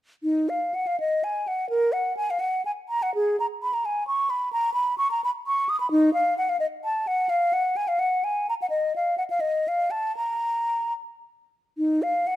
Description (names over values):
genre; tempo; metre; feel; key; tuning
classical, baroque-style fantasia for unaccompanied flute; 70-89 BPM (dotted quarters); 6/8; rubato; Eb minor; A4 = 440 Hz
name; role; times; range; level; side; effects
mellow hollow silver concert flute; solo; 0.2-12.4 s; Eb4 to Eb6; -22 LUFS; equal; none
room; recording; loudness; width
light reverb; close, detailed microphones; -22 LUFS; side -14 dB against mid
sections
0.2-11.8 A section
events
none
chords
none